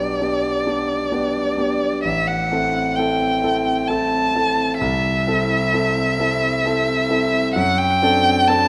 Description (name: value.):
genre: classical, romantic duo for violin and grand piano.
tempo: 65 BPM.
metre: 3/4.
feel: rubato.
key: unclear.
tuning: A4 = 439 Hz.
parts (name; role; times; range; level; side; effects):
warm violin; melody; 0.0-8.7 s; D5 to A5; -22 LUFS; equal; none.
clear concert grand piano; accompaniment; 0.0-8.7 s; A1 to A4; -23 LUFS; equal; none.
room: wet scoring stage reverb, RT60 2.1 s.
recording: none.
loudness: -19 LUFS.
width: mono.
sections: 0.0-8.7 A section.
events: none.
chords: 0.0 G/B; 2.1 Am7; 4.8 Am/C; 7.6 D7/F#.